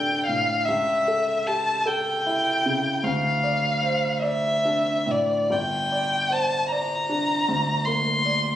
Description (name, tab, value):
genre	classical, romantic duo for violin and grand piano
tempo	51 BPM (dotted quarters)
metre	12/8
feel	rubato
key	D minor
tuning	A4 = 440 Hz
part	rich violin	melody	0.0-8.6 s	D5 to C6	-22 LUFS	left 1 dB	none
part	clear grand piano	accompaniment	0.0-8.6 s	G1 to D5	-26 LUFS	right 1 dB	none
room	moderate recital hall reverb, RT60 1.3 s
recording	recorded on a phone in the room, studio reverb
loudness	-21 LUFS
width	side -11 dB against mid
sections	0.0-8.6 A section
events	none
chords	0.0 Dm; 0.7 A/C#; 3.0 Dm; 5.5 Gm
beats	| 0.70 1.88 3.05 4.24 | 5.51 6.71 7.86